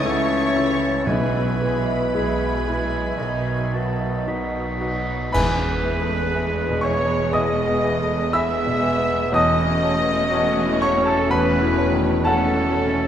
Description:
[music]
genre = classical, romantic movement for piano and orchestra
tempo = 55-64 BPM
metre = 4/4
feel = rubato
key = E major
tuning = A4 = 440 Hz
[part]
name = clear concert grand piano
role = melody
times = 0.0-13.1 s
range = B1 to E6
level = -23 LUFS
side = left 1 dB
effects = none
[part]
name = warm symphonic violin section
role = melody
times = 0.0-13.1 s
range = F#4 to C#6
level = -35 LUFS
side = left 3 dB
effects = none
[part]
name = clear oboe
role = second line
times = 0.0-13.1 s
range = A4 to B5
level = -28 LUFS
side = right 1 dB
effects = none
[part]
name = mellow hollow concert flute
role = second line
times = 0.0-12.8 s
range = E5 to A5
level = -35 LUFS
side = equal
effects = none
[part]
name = rich symphonic violin section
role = second line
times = 0.0-13.1 s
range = A4 to E5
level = -31 LUFS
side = left 2 dB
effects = none
[part]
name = warm clarinet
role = second line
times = 0.0-13.1 s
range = A4 to E5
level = -30 LUFS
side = left 1 dB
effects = none
[part]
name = rich symphonic viola section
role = accompaniment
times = 0.0-13.1 s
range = F#3 to E4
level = -31 LUFS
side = right 3 dB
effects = none
[part]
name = warm bassoon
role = accompaniment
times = 0.0-12.9 s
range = D#3 to F#3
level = -31 LUFS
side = right 3 dB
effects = none
[part]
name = mellow French horn section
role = sustained chords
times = 0.0-13.1 s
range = G#3 to G#4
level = -28 LUFS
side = left 2 dB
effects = none
[part]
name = clear symphonic cello section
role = bass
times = 0.0-13.1 s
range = E2 to C#3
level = -29 LUFS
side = right 3 dB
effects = none
[part]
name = rich symphonic double bass section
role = bass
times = 0.0-13.1 s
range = E1 to C#2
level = -30 LUFS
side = right 5 dB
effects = none
[part]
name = cymbal swell, clash cymbals and concert bass drum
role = percussion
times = 1.1-7.3 s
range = none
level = -32 LUFS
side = equal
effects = none
[part]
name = timpani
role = percussion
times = 1.1-6.8 s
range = E2 to B2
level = -30 LUFS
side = equal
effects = none
[sound]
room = moderate concert hall reverb, RT60 1.8 s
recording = none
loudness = -18 LUFS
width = side -9 dB against mid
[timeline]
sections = 0.0-5.3 A section; 5.3-13.1 B section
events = band accent 5.3-6.3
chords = 0.0 A/C#; 1.1 E/B; 3.2 B; 5.3 E; 9.3 F#m7/E

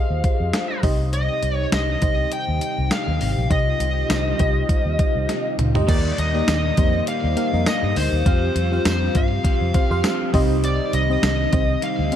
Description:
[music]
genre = 1980s-style pop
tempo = 101 BPM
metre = 4/4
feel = swing 55% on 16ths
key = unclear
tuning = A4 = 439 Hz
[part]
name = smooth overdriven lead guitar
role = melody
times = 0.0-12.2 s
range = C5 to G5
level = -25 LUFS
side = left 3 dB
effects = tape echo
[part]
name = FM electric piano with soft pad layer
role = accompaniment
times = 0.0-12.2 s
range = C3 to F5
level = -26 LUFS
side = equal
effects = chorus, phaser
[part]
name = vintage muted fingered electric bass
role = bass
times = 0.1-12.1 s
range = Ab1 to G2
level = -23 LUFS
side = equal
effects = none
[part]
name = clean 12-bit digital drum machine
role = drums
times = 0.2-12.2 s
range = crash cymbal, hi-hat, kick drum, snare drum, tambourine, toms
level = -22 LUFS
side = equal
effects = overdrive
[part]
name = ensemble organ-string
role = sustained chords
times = 1.1-12.2 s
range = C3 to G4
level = -29 LUFS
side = equal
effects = ensemble chorus
[part]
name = overdriven electric guitar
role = accompaniment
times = 5.9-12.2 s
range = C3 to F4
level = -34 LUFS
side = right 7 dB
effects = wide subtle chorus
[sound]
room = light reverb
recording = dark, warm production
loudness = -18 LUFS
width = side -10 dB against mid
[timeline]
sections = 0.0-5.9 A section; 5.9-12.2 B section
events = drum fill 5.3-5.9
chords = 0.0 Fm7; 0.8 Cm; 5.9 Eb; 8.3 Fsus2; 10.3 Cm

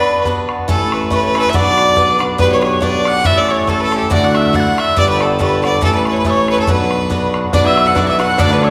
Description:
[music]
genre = celtic folk, Celtic polka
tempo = 140 BPM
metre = 2/4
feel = swing 55% on 8ths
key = B minor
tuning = A4 = 438 Hz
[part]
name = clear fiddle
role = melody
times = 0.0-8.7 s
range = G4 to F#5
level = -18 LUFS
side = equal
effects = none
[part]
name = reedy wooden whistle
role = second line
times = 0.0-8.7 s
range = A5 to A6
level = -24 LUFS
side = equal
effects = none
[part]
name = picked swing-style acoustic guitar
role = accompaniment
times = 0.0-8.7 s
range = D2 to B4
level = -21 LUFS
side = equal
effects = none
[part]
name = bodhran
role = percussion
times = 0.3-8.7 s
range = none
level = -22 LUFS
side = equal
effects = none
[part]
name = mellow tuba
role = bass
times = 0.7-8.7 s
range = G1 to D2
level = -22 LUFS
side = equal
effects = none
[part]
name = bluegrass banjo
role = second line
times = 7.5-8.7 s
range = B3 to F#4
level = -26 LUFS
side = equal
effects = none
[sound]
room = wet scoring stage reverb, RT60 1.6 s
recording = recorded in a church or concert hall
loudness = -14 LUFS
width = mono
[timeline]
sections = 0.7-7.5 A section; 7.5-8.7 B section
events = none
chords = 0.0 Bm; 0.7 Aadd9; 1.5 Bm; 2.4 G/B; 3.3 A; 4.1 Dadd9; 5.0 Gadd9; 5.8 A; 6.7 Bm

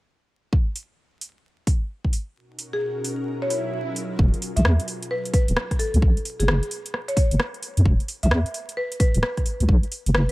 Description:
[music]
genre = UK garage, two-step garage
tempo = 131 BPM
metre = 4/4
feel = swing 64% on 16ths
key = unclear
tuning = A4 = 440 Hz
[part]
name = electronic kick drum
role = drums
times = 0.5-9.8 s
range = none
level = -20 LUFS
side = equal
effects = none
[part]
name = house drum kit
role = drums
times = 0.8-10.3 s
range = hi-hat, rim click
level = -27 LUFS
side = equal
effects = none
[part]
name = ethereal airy pad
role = sustained chords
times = 2.6-4.2 s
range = B2 to A#4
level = -33 LUFS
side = left 1 dB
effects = ensemble chorus, built-in reverb, sidechain pumping
[part]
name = buzzing marimba with medium mallets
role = melody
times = 2.7-10.3 s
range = G#4 to E5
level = -29 LUFS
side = left 1 dB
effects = analog delay
[part]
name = swell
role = sound effects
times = 3.5-4.2 s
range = none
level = -34 LUFS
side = right 6 dB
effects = none
[part]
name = deep soft wobble bass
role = bass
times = 4.2-10.3 s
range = D1 to F#2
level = -19 LUFS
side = equal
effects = chorus, tube saturation
[sound]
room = little or no reverb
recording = echo-heavy mix, vinyl crackle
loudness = -21 LUFS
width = side -19 dB against mid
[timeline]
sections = 0.5-4.2 A section; 4.2-10.3 B section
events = kick drops out 2.4-4.2; swell 3.5-4.2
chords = 0.5 N.C.; 2.4 Bmaj9; 3.3 F#maj9; 4.2 E5; 4.9 Bm; 6.0 B5; 6.9 F#5; 7.9 E5; 8.5 Bm; 9.7 B5

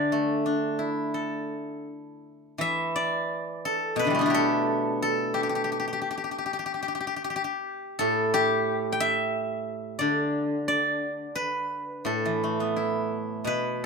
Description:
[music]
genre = chinese traditional, Chinese solo plucked strings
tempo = 88 BPM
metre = 4/4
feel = rubato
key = D zhi mode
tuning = A4 = 440 Hz
[part]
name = steel-string zither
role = solo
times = 0.0-13.9 s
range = A2 to G5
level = -25 LUFS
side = equal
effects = none
[sound]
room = moderate small room reverb, RT60 0.6 s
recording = minimal, uncompressed stereo recording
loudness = -25 LUFS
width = side -4 dB against mid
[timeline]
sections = 0.0-2.6 A section; 2.6-13.9 B section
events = none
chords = none

